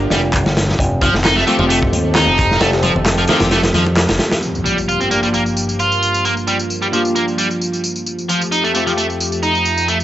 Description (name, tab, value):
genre	breakbeat, breaks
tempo	132 BPM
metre	4/4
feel	straight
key	G minor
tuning	A4 = 440 Hz
part	phased analog pad	sustained chords	0.0-10.0 s	F2 to Bb4	-21 LUFS	equal	phaser, chorus, sidechain pumping
part	fingered electric bass with an envelope filter	bass	0.0-4.2 s	F1 to F2	-19 LUFS	equal	none
part	overdriven electric guitar	riff	0.1-10.0 s	Eb3 to F4	-17 LUFS	right 1 dB	low-pass filter, analog delay
part	crunchy breakbeat drum kit	drums	0.1-4.4 s	hi-hat, kick drum, snare drum	-17 LUFS	equal	none
part	congas	percussion	0.1-4.4 s	none	-25 LUFS	left 1 dB	none
part	electronic handclaps and tambourine	drums	0.3-10.0 s	none	-24 LUFS	left 1 dB	overdrive
part	bright chamber string section	stabs	1.5-8.9 s	A3 to G4	-24 LUFS	left 2 dB	vintage 12-bit sampler grit, low-pass filter, analog delay
part	impact	sound effects	4.4-6.2 s	none	-28 LUFS	equal	none
room	light reverb, small room ambience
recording	dry, gritty hardware recording, transformer saturation, vinyl crackle, nothing above 7.9 kHz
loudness	-13 LUFS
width	side -13 dB against mid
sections	0.0-4.4 A section; 4.4-10.0 B section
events	band accent 4.0; impact 4.4-6.2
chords	0.0 Gm7; 0.8 Fadd9; 4.4 Gm7; 8.1 Fadd9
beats	0.34 | 0.79 1.25 1.70 2.15 | 2.61 3.06 3.52 3.97 | 4.43 4.88 5.34 5.79 | 6.25 6.70 7.16 7.61 | 8.06 8.52 8.97 9.43 | 9.88